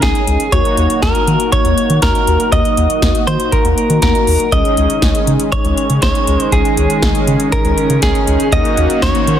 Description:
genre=synth-pop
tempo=120 BPM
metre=4/4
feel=straight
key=unclear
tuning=A4 = 440 Hz
part: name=direct-recorded clean electric guitar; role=melody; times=0.0-9.4 s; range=Ab4 to Eb5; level=-16 LUFS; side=right 2 dB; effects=ping-pong delay
part: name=mellow synth brass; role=accompaniment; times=0.0-9.4 s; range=Bb3 to Ab4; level=-18 LUFS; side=left 1 dB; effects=chorus
part: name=round analog bass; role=bass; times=0.0-9.4 s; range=Db2 to Eb3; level=-15 LUFS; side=equal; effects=none
part: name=electro analog drum machine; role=drums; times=0.0-9.4 s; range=hi-hat, kick drum, snare drum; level=-17 LUFS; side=equal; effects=overdrive
part: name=chorused pulse-width pad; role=sustained chords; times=4.5-9.4 s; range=Eb3 to Gb4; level=-20 LUFS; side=equal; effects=none
room=light reverb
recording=dense, heavily limited modern master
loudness=-11 LUFS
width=side -10 dB against mid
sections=0.0-9.4 A section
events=none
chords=0.0 Dbsus2; 0.5 Ebm7; 4.5 Dbsus2; 8.5 Ebm7

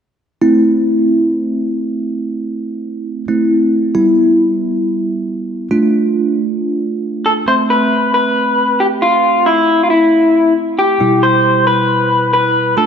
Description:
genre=pop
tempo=136 BPM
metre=4/4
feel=straight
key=A minor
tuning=A4 = 438 Hz
part: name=bell-like tine electric piano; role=accompaniment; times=0.4-12.9 s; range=B2 to E5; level=-14 LUFS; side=right 1 dB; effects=phaser
part: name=electric guitar through a small old amp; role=melody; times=7.3-12.9 s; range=E4 to C5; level=-11 LUFS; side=left 2 dB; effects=tape echo
room=moderate lush hall reverb, RT60 1.9 s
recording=none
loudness=-11 LUFS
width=side -7 dB against mid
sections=0.4-7.5 A section; 7.5-12.9 B section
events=none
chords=0.4 Am; 3.9 Em; 5.7 Dm; 7.5 Amadd9; 11.0 Em

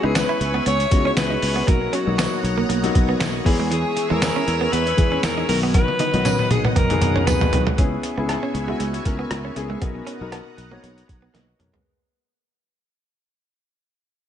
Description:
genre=1980s-style pop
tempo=118 BPM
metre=4/4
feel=swing 55% on 16ths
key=B major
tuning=A4 = 440 Hz
part: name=breathy alto saxophone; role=melody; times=0.0-7.7 s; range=F#4 to C#5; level=-24 LUFS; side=equal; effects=tape echo
part: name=warm baby grand piano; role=accompaniment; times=0.0-12.0 s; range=D#3 to D#5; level=-26 LUFS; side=left 5 dB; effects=none
part: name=string machine, full ensemble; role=sustained chords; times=0.0-11.8 s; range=B3 to E6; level=-31 LUFS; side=equal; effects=ensemble chorus
part: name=direct-recorded clean electric guitar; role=riff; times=0.0-11.8 s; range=E3 to E4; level=-28 LUFS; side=right 6 dB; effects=lush chorus
part: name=sustaining fretless electric bass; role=bass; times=0.0-11.8 s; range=B1 to E2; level=-25 LUFS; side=equal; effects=none
part: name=lo-fi sampler-style drum kit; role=drums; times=0.2-11.8 s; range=hi-hat, kick drum, rim click, snare drum, tambourine, toms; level=-21 LUFS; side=equal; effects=overdrive
part: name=tambourine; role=percussion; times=0.2-7.4 s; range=none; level=-38 LUFS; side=right 8 dB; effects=none
room=light reverb, digital ambience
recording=nothing above 10.8 kHz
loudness=-18 LUFS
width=side -10 dB against mid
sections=0.0-7.8 A section; 7.8-11.8 B section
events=drum fill 5.7-7.8, 11.3-11.8; fade-out 7.8-11.8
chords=0.0 C#m7; 1.7 Bmaj7; 3.5 E; 5.5 B; 7.8 C#m7; 9.8 Bmaj7

